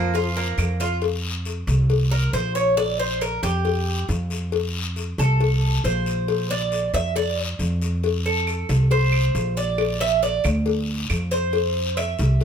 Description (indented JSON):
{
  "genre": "latin, Cuban son and guajira",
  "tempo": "137 BPM",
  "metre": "4/4",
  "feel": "straight",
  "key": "F major",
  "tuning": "A4 = 440 Hz",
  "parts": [
    { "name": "warm French horn", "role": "melody", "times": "0.0-0.8 s", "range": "F3", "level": "-31 LUFS", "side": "right 1 dB", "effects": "none" },
    { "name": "Cuban tres", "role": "arpeggios", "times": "0.0-12.4 s", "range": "Bb3 to E5", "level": "-24 LUFS", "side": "right 2 dB", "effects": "none" },
    { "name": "upright bass", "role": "bass", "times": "0.0-12.4 s", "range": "Bb1 to F2", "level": "-22 LUFS", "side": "equal", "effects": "none" },
    { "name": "cowbell", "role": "percussion", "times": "0.1-12.4 s", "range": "none", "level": "-28 LUFS", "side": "left 12 dB", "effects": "none" },
    { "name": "guiro", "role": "percussion", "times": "0.1-12.4 s", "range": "none", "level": "-34 LUFS", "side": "left 5 dB", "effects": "none" },
    { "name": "claves", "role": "percussion", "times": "0.6-0.8, 8.5-12.2 s", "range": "none", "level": "-32 LUFS", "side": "right 6 dB", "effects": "none" }
  ],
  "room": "light reverb",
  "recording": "close, detailed microphones",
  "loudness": "-20 LUFS",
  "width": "side -8 dB against mid",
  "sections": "0.0-1.0 A section; 1.0-12.4 B section",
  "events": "Cuban tres solo 1.0-12.4",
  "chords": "0.0 Bb5; 1.0 F5; 2.8 Bb5; 4.5 F; 6.3 Bb; 8.0 F; 9.8 Bb; 11.5 F5",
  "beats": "0.14 0.58 | 1.02 1.46 1.90 2.34 | 2.77 3.21 3.65 4.09 | 4.53 4.97 5.40 5.84 | 6.28 6.72 7.16 7.59 | 8.03 8.47 8.91 9.35 | 9.78 10.22 10.66 11.10 | 11.53 11.97 12.41"
}